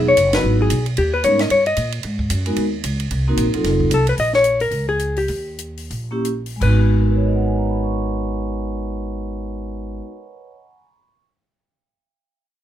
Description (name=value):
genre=jazz, small-group swing and bop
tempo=157-225 BPM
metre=4/4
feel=swing 59% on 8ths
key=G# minor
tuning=A4 = 441 Hz
part: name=vibraphone with medium mallets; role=accompaniment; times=0.0-3.9, 6.1-11.2 s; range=F#3 to C#6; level=-22 LUFS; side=equal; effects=none
part: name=upright bass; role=bass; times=0.0-10.0 s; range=Eb1 to A#2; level=-21 LUFS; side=right 1 dB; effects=none
part: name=hollow-body jazz guitar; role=melody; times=0.1-1.9, 3.9-10.0 s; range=G4 to D#5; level=-17 LUFS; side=left 3 dB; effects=none
part: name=compact cocktail drum kit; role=drums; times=0.2-6.7 s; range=crash cymbal, hi-hat, kick drum, ride cymbal, snare drum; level=-28 LUFS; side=right 1 dB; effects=none
room=light reverb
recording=minimal, uncompressed stereo recording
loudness=-17 LUFS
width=side -11 dB against mid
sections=0.0-4.2 A section; 4.2-6.6 B section; 6.6-9.7 C section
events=band accent 0.3; slowing down 4.2-6.6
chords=0.0 Emaj9; 1.0 D#7b13; 2.0 G#7(no3); 3.1 Cm7b5; 3.6 F7b9; 4.2 A#m7; 5.3 D#; 6.6 G#m9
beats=0.17 0.43 0.70 | 0.97 1.23 1.50 1.77 | 2.04 2.30 2.57 2.84 | 3.10 3.37 3.64 3.91 | 4.17 4.44 4.71 5.00 | 5.29 5.59 5.91 6.25 | 6.62 7.00 7.38 7.76 | 8.14 8.53 8.91 9.29